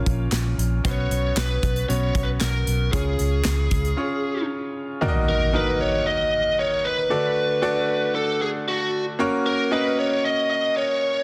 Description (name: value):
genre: piano-driven pop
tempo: 115 BPM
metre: 4/4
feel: straight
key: unclear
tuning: A4 = 441 Hz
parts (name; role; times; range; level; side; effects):
- bright upright piano; accompaniment; 0.0-11.2 s; A#2 to D#5; -28 LUFS; equal; none
- vintage muted fingered electric bass; bass; 0.1-3.9 s; A#1 to C#2; -25 LUFS; equal; none
- modern studio drum kit; drums; 0.1-4.0 s; handclaps, hi-hat, kick drum, snare drum; -28 LUFS; equal; soft clipping on snare
- bluesy overdriven lead guitar; melody; 0.9-11.2 s; F#4 to D#5; -26 LUFS; equal; distortion
- impact; sound effects; 5.0-7.1 s; none; -29 LUFS; equal; none
room: moderate scoring stage reverb, RT60 1.5 s, studio reverb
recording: dense, heavily limited modern master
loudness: -23 LUFS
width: mono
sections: 0.0-5.0 A section; 5.0-11.2 B section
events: break 4.0-5.0; impact 5.0-7.1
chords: 0.0 A#m; 0.8 Bsus2; 2.9 C#; 5.0 D#m; 7.1 D; 9.2 F#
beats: 0.32 | 0.84 1.37 1.89 2.41 | 2.94 3.46 3.98 4.50 | 5.02 5.54 6.07 6.59 | 7.11 7.63 8.15 8.67 | 9.19 9.71 10.24 10.76